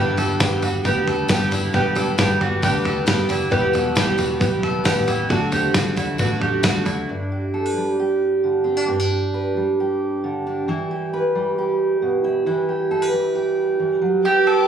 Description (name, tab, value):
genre	indie folk with a building arrangement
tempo	134 BPM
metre	4/4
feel	straight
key	unclear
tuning	A4 = 435 Hz
part	dark upright piano	accompaniment	0.0-7.1 s	G1 to E5	-26 LUFS	right 1 dB	none
part	picked twelve-string acoustic guitar	accompaniment	0.0-7.1 s	E2 to G4	-25 LUFS	left 5 dB	none
part	mandolin	arpeggios	0.0-7.1, 14.3-14.7 s	E4 to A4	-22 LUFS	right 5 dB	analog delay
part	fingered electric bass	bass	0.0-7.1 s	E1 to D2	-26 LUFS	left 1 dB	none
part	dusty soul sampler-style drum kit	drums	0.2-7.0 s	kick drum, snare drum, toms	-22 LUFS	equal	none
part	tambourine	percussion	0.2-7.0 s	none	-33 LUFS	left 3 dB	none
part	fingerpicked steel-string acoustic guitar	accompaniment	7.1-14.7 s	G2 to B4	-19 LUFS	right 2 dB	none
part	warm chamber string section	sustained chords	14.3-14.7 s	B4 to D6	-24 LUFS	left 5 dB	none
room	light reverb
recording	recorded on a phone in the room, studio reverb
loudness	-18 LUFS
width	side -8 dB against mid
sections	0.0-7.1 A section; 7.1-14.3 B section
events	upright piano fill 6.4-7.1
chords	0.0 Em; 5.3 D; 7.1 G; 10.7 Em